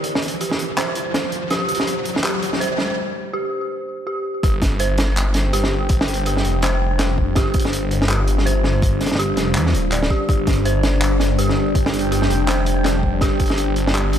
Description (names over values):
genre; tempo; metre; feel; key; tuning
half-time drum and bass; 164 BPM; 4/4; swing 59% on 16ths, half-time; G minor; A4 = 440 Hz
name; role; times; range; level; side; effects
deep dark ambient pad; sustained chords; 0.0-14.2 s; G3 to A5; -25 LUFS; left 1 dB; chorus, built-in reverb, vintage 12-bit sampler grit, sidechain pumping
dark detuned synth bell; arpeggios; 0.0-14.2 s; G4 to D5; -25 LUFS; right 1 dB; chorus, low-pass filter, digital delay
crunchy breakbeat drum kit; drums; 0.0-14.2 s; handclaps, hi-hat, snare drum; -23 LUFS; equal; none
riser; sound effects; 0.0-3.0 s; none; -27 LUFS; equal; none
phased detuned saw bass; bass; 4.4-14.2 s; D1 to E2; -20 LUFS; equal; phaser
electronic kick drum; drums; 4.4-13.5 s; none; -19 LUFS; equal; none
room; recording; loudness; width
light reverb, small room reverb; none; -17 LUFS; side -9 dB against mid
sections
0.0-4.4 A section; 4.4-14.2 B section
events
build-up 0.0-4.4; riser 0.0-3.0; break 3.0-4.4; drop 4.4-14.2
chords
0.0 Gm; 4.4 G5